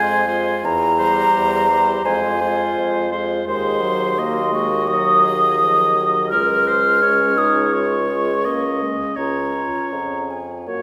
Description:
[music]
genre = classical, slow romantic movement for wind quintet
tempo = 84 BPM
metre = 4/4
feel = rubato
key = Db major from 3.5 s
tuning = A4 = 439 Hz
[part]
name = mellow hollow silver concert flute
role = melody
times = 0.0-10.8 s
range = Gb5 to F6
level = -20 LUFS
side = equal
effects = none
[part]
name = warm oboe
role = second line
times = 0.0-10.8 s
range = Bb4 to Eb5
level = -27 LUFS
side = equal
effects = none
[part]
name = clear French horn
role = accompaniment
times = 0.0-10.8 s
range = F3 to Db4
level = -30 LUFS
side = equal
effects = none
[part]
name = warm clarinet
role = accompaniment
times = 0.0-10.8 s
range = Db4 to Ab4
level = -31 LUFS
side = equal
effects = none
[part]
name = mellow bassoon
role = bass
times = 0.0-10.8 s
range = Db2 to Gb2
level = -26 LUFS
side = equal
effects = none
[sound]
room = wet scoring stage reverb, RT60 1.7 s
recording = recorded in a church or concert hall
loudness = -18 LUFS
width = mono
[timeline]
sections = 0.0-10.8 A section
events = none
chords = 0.0 Fm; 0.6 C7/E; 2.0 Fm; 3.5 Ab7/Eb; 6.3 Db

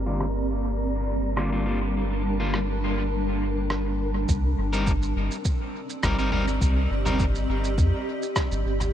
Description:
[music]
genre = ambient dub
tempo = 103 BPM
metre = 4/4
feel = swing 53% on 16ths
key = unclear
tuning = A4 = 441 Hz
[part]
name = granular cloud pad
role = sustained chords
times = 0.0-8.9 s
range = G3 to A5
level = -29 LUFS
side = equal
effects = built-in reverb
[part]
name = soft dub sub bass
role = bass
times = 0.0-8.9 s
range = G1 to F2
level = -26 LUFS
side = equal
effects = none
[part]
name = wind-like tuned noise texture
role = texture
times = 0.0-4.3 s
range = Bb3 to Bb4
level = -38 LUFS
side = equal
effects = built-in reverb
[part]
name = electric guitar at the edge of break-up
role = stabs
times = 0.1-7.2 s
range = D3 to Bb4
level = -32 LUFS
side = left 2 dB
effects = dub echo
[part]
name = lo-fi sampler-style drum kit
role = drums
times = 0.2-8.9 s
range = rim click, shaker, toms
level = -33 LUFS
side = right 1 dB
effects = low-pass filter on snare, low-pass filter on perc, low-pass filter on toms, dub echo
[part]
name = electronic kick drum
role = drums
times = 4.3-8.5 s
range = none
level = -26 LUFS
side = equal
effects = none
[sound]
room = light reverb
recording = low-pass filter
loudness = -23 LUFS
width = side -10 dB against mid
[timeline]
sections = 0.0-4.3 A section; 4.3-8.9 B section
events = filter sweep on ambient pad 0.0-4.3; filter sweep on clean electric guitar 0.0-4.3; filter sweep 0.0-4.3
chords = 0.0 Gm7; 4.3 Cm7

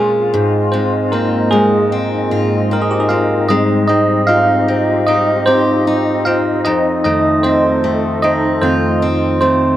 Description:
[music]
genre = pop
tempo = 76 BPM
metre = 4/4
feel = straight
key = F minor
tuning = A4 = 439 Hz
[part]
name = bell-like tine electric piano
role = accompaniment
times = 0.0-9.8 s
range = F2 to F5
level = -14 LUFS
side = right 2 dB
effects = phaser, slapback echo
[part]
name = large flute ensemble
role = sustained chords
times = 0.0-9.8 s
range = C4 to Eb5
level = -20 LUFS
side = left 2 dB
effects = none
[part]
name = picked steel-string acoustic guitar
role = arpeggios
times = 0.0-9.8 s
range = F2 to G4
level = -20 LUFS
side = left 4 dB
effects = slapback echo
[sound]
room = little or no reverb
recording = recorded outdoors, with no room sound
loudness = -12 LUFS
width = side -12 dB against mid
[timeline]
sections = 0.0-9.8 A section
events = tine electric piano solo 0.0-9.8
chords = 0.3 Fm7/Ab; 3.5 Abmaj7; 6.7 F7

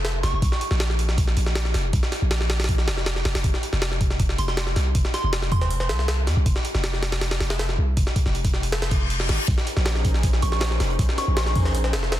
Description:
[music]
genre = drum and bass, jungle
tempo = 159 BPM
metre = 4/4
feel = straight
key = Bb minor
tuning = A4 = 438 Hz
[part]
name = long sustained 808-style bass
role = bass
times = 0.0-12.2 s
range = F1 to F2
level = -23 LUFS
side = equal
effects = none
[part]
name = jungle sampler-style drum kit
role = drums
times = 0.0-12.2 s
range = hi-hat, kick drum, snare drum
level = -23 LUFS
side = equal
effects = none
[part]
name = soft synth bell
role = melody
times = 0.2-0.6, 4.4-5.9, 10.4-11.6 s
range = C6 to Db6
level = -32 LUFS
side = right 2 dB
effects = chorus, phaser, vintage 12-bit sampler grit, dub echo
[part]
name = reverse cymbal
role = sound effects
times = 8.9-9.5 s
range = none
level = -29 LUFS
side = left 3 dB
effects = none
[part]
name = soft string machine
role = sustained chords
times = 9.7-12.2 s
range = Db4 to C5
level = -32 LUFS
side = equal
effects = ensemble chorus, vintage 12-bit sampler grit
[part]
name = crunchy breakbeat drum kit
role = drums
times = 9.5-12.2 s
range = hi-hat, snare drum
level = -39 LUFS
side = right 3 dB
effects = none
[sound]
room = little or no reverb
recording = dense, heavily limited modern master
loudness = -20 LUFS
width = side -13 dB against mid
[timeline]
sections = 0.0-12.2 A section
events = reverse cymbal 8.9-9.5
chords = 0.0 Bb5; 3.4 F5; 9.5 Bbm11

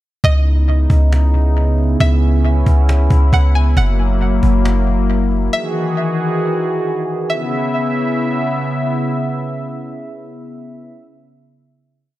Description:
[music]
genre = hip hop, atmospheric cloud-rap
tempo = 136 BPM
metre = 4/4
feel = half-time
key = C# dorian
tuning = A4 = 440 Hz
[part]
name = string-like resonator pluck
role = melody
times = 0.2-8.6 s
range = D#5 to G#5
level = -23 LUFS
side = right 1 dB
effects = chorus, analog delay
[part]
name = warm analog pad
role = sustained chords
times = 0.2-10.9 s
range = C#3 to E5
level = -19 LUFS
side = equal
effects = chorus
[part]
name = clean 808-style bass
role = bass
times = 0.2-5.5 s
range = F#1 to C#2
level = -12 LUFS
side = equal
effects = none
[part]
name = cajon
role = drums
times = 0.2-5.5 s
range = none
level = -24 LUFS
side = equal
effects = analog delay
[sound]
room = little or no reverb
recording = echo-heavy mix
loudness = -13 LUFS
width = side -15 dB against mid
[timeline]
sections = 0.2-7.3 verse; 7.3-10.8 final chord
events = none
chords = 0.2 C#m9; 3.8 F#7; 5.5 Emaj9; 7.3 C#m7

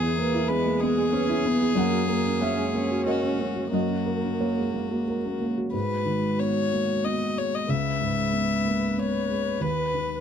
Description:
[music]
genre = neoclassical piano and strings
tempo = 93 BPM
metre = 3/4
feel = rubato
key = G# minor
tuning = A4 = 440 Hz
[part]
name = rich violin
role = melody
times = 0.0-10.2 s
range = F#4 to E5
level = -29 LUFS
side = left 5 dB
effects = none
[part]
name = dark viola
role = accompaniment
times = 0.0-10.2 s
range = G#3 to B4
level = -30 LUFS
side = right 3 dB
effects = none
[part]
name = felt-muted upright piano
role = accompaniment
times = 0.0-10.2 s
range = C#2 to G#5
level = -25 LUFS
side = equal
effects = none
[sound]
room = moderate studio reverb, RT60 0.8 s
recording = dark, warm production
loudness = -23 LUFS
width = side -8 dB against mid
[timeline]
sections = 0.0-5.7 A section; 5.7-10.2 B section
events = none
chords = 0.0 E; 1.8 F#; 5.7 G#m7; 7.7 C#m7; 9.6 B/D#

